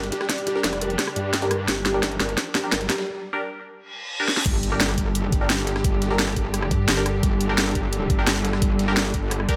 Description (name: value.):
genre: dark technical drum and bass.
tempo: 173 BPM.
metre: 4/4.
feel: straight.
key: G minor.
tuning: A4 = 439 Hz.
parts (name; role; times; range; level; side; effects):
rich studio string section; sustained chords; 0.0-9.6 s; D3 to G4; -31 LUFS; equal; sidechain pumping.
metallic wobble bass; bass; 0.0-9.5 s; F1 to G2; -29 LUFS; equal; distortion, chorus, overdrive, sidechain pumping.
breakbeat sampler-style drum kit; drums; 0.0-9.6 s; hi-hat, snare drum; -37 LUFS; equal; none.
drum and bass drum kit; drums; 0.0-9.6 s; crash cymbal, hi-hat, rim click, snare drum; -27 LUFS; equal; overdrive.
riser, reverse cymbal and impact; sound effects; 1.1-5.8 s; none; -35 LUFS; equal; none.
felt-muted upright piano; arpeggios; 0.1-3.1 s; G4 to G5; -33 LUFS; equal; vintage 12-bit sampler grit, sidechain pumping, low-pass filter, dub echo.
electronic kick drum; drums; 0.3-9.6 s; none; -26 LUFS; equal; overdrive, high-pass filter on kick, high-pass filter on room.
band-passed chord stab; stabs; 0.6-9.5 s; D4 to Bb4; -33 LUFS; equal; phaser, lush chorus, dub echo.
pulsing pluck wobble bass; bass; 6.7-7.2 s; G1 to G2; -26 LUFS; equal; chorus.
room: light reverb.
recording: none.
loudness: -23 LUFS.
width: mono.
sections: 0.0-4.5 A section; 4.5-9.6 B section.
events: build-up 0.0-4.5; drum fill 0.0-3.1, 4.3; filter sweep on synth stab 0.0-4.5; break 3.1-4.5; reverse cymbal 3.9-4.5; drop 4.5-9.6; impact 4.5-5.8.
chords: 0.0 Gm.